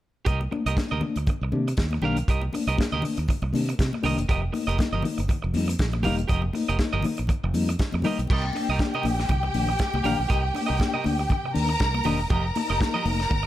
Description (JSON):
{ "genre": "disco", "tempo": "120 BPM", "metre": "4/4", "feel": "swing 56% on 16ths", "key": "unclear", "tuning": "A4 = 440 Hz", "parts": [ { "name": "electric guitar at the edge of break-up", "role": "accompaniment", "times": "0.3-13.5 s", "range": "G4 to F5", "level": "-31 LUFS", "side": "right 5 dB", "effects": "harmonic tremolo" }, { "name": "mellow reed electric piano", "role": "accompaniment", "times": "0.3-13.4 s", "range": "C3 to Eb4", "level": "-30 LUFS", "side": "left 4 dB", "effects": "fast tremolo" }, { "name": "fingered electric bass", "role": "bass", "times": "0.3-13.5 s", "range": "E1 to C3", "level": "-27 LUFS", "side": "right 1 dB", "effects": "none" }, { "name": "warm soul drum kit", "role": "drums", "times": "0.3-13.4 s", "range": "crash cymbal, hi-hat, kick drum, snare drum", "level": "-28 LUFS", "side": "equal", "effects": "none" }, { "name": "congas", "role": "percussion", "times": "0.3-13.4 s", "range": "none", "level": "-34 LUFS", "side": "left 3 dB", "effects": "none" }, { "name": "warm studio string section", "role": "second line", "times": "8.3-13.5 s", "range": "G4 to Bb5", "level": "-28 LUFS", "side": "left 1 dB", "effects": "none" } ], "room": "light reverb, small room ambience", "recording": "none", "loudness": "-22 LUFS", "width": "side -13 dB against mid", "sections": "0.3-8.3 A section; 8.3-13.5 B section", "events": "none", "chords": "0.3 Cm7; 4.3 F9sus4; 8.3 Cm7; 12.3 F9sus4" }